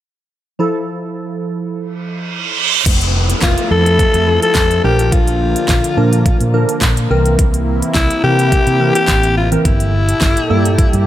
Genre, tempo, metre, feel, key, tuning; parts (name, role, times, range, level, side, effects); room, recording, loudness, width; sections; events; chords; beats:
dance-pop; 106 BPM; 4/4; straight; F major; A4 = 438 Hz
glassy digital keys; accompaniment; 0.6-11.0 s; E3 to Bb4; -20 LUFS; right 1 dB; chorus, sidechain pumping
reverse cymbal and downlifter; sound effects; 2.2-7.4 s; -20 LUFS; right 4 dB
lush unison pad; sustained chords; 3.2-11.1 s; Bb2 to A4; -23 LUFS; equal; chorus, sidechain pumping
vintage muted fingered electric bass; bass; 2.9-11.1 s; F1 to C3; -16 LUFS; equal; sidechain pumping
pop drum kit; drums; 2.9-11.1 s; crash cymbal, handclaps, hi-hat, kick drum, snare drum; -15 LUFS; equal
raspy alto saxophone; melody; 3.4-11.1 s; E4 to A4; -16 LUFS; left 3 dB; tape echo
digital ambience; -11 LUFS; side -12 dB against mid
0.6-2.9 A section; 2.9-11.1 B section
reverse cymbal 2.2-2.9
0.6 Fmaj7; 2.6 N.C.; 2.9 Fmaj7; 4.8 Bb; 7.1 C7; 9.7 Gmadd9
| 0.59 1.16 1.73 2.29 | 2.86 3.43 3.99 4.56 | 5.12 5.69 6.26 6.82 | 7.39 7.95 8.52 9.09 | 9.65 10.22 10.78